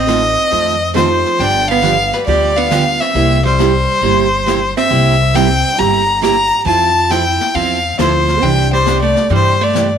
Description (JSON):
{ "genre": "country, western swing", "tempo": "136 BPM", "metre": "4/4", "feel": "swing 67% on 8ths", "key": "F major", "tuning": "A4 = 440 Hz", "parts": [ { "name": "clear fiddle", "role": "melody", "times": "0.0-9.9 s", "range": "B4 to Bb5", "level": "-14 LUFS", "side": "left 2 dB", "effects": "none" }, { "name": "archtop guitar, miked and amplified", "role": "second line", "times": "0.0-9.9 s", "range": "F3 to G4", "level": "-20 LUFS", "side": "right 10 dB", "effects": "slapback echo" }, { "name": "upright bass", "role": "bass", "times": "0.0-10.0 s", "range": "G1 to G2", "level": "-18 LUFS", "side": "left 2 dB", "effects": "none" }, { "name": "bright upright piano", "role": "accompaniment", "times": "0.1-9.1 s", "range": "F3 to G4", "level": "-26 LUFS", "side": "left 13 dB", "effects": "none" }, { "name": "picked steel-string acoustic guitar", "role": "accompaniment", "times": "0.1-9.9 s", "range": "C3 to A4", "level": "-19 LUFS", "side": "right 10 dB", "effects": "none" }, { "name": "jazz brush drum kit", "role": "drums", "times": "0.1-10.0 s", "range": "brushed snare drum, hi-hat, snare drum", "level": "-25 LUFS", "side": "left 12 dB", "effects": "none" } ], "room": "light reverb, studio reverb", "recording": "1960s-style stereo with parts hard left and right", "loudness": "-11 LUFS", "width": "side -8 dB against mid", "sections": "0.0-10.0 A section", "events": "none", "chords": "0.0 F7/A; 1.4 G7; 3.2 C7; 6.7 Fmaj7; 8.4 Cadd9", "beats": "0.07 0.52 0.95 | 1.39 1.83 2.27 2.71 | 3.15 3.59 4.03 4.47 | 4.91 5.35 5.79 6.23 | 6.67 7.11 7.55 7.99 | 8.43 8.87 9.31 9.75" }